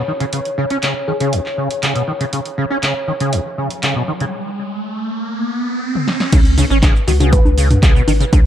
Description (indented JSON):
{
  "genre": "acid house",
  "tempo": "120 BPM",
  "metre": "4/4",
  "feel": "straight",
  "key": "unclear",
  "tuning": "A4 = 440 Hz",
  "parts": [
    { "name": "warbly tape-like pad", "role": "sustained chords", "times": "0.0-8.5 s", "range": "B4 to C#5", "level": "-25 LUFS", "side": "left 2 dB", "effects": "chorus, built-in reverb, sidechain pumping" },
    { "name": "acid bass, saw", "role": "riff", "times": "0.0-8.4 s", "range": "C#2 to C#4", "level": "-19 LUFS", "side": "equal", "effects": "overdrive, ensemble chorus, digital delay" },
    { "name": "punchy analog drum machine", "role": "drums", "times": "0.2-8.4 s", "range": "congas, crash cymbal, handclaps, hi-hat, shaker, snare drum, toms", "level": "-20 LUFS", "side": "equal", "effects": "none" },
    { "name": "bell-like FM electric piano", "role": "melody", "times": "1.1-1.3, 7.1-7.5 s", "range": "F#4 to B4", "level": "-26 LUFS", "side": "left 4 dB", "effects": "chorus, cassette tape, dub echo" },
    { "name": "riser", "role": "sound effects", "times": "3.5-6.3 s", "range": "none", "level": "-23 LUFS", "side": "right 2 dB", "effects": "none" },
    { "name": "saturated sub bass", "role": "bass", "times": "6.3-8.5 s", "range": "G#1 to C#2", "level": "-16 LUFS", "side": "equal", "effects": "sidechain pumping" },
    { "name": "electronic kick drum", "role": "drums", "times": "6.3-8.4 s", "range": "none", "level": "-11 LUFS", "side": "equal", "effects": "none" }
  ],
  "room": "light reverb",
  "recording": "dark, warm production",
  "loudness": "-14 LUFS",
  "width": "side -10 dB against mid",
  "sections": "0.0-6.3 A section; 6.3-8.5 B section",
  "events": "riser 3.5-6.3; break 4.3-6.3; drum fill 6.0-6.3; drop 6.3-8.5",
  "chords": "0.0 N.C.; 6.3 C#7(no3)",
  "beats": "| 0.33 0.83 1.33 1.83 | 2.33 2.83 3.33 3.83 | 4.33 4.83 5.33 5.83 | 6.33 6.83 7.33 7.83 | 8.33"
}